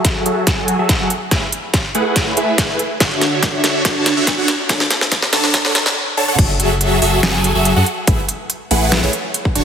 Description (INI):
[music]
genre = future bass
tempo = 142 BPM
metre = 4/4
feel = half-time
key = A major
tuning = A4 = 440 Hz
[part]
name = supersaw chords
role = riff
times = 0.0-9.6 s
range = D3 to A5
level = -17 LUFS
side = right 1 dB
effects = phaser, sidechain pumping, low-pass filter, tape echo
[part]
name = dubstep drum kit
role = drums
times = 0.0-9.6 s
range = crash cymbal, hi-hat, snare drum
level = -18 LUFS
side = equal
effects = high-pass filter on snare, studio reverb, high-pass filter on hats, high-pass filter on cymbals
[part]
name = electronic kick drum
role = drums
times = 0.0-9.5 s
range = none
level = -18 LUFS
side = equal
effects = studio reverb
[part]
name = saturated sub bass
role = bass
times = 6.4-9.6 s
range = D1 to F#2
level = -19 LUFS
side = equal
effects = sidechain pumping
[sound]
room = moderate lush hall reverb, RT60 2.1 s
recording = heavily compressed radio sound, multiband compression, high-pass filter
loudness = -13 LUFS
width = side -8 dB against mid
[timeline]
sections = 0.0-6.4 A section; 6.4-9.6 B section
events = build-up 0.0-6.4; drum fill 0.0-6.0; filter sweep on supersaw synth 0.0-6.4; filter sweep 0.0-6.4; break 6.0-6.4; drop 6.4-9.6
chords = 0.0 F#m9; 1.1 Amaj7(no3); 2.8 Dmaj7; 4.7 Dmaj7(no3); 6.4 F#m9; 7.9 Amaj7(no3)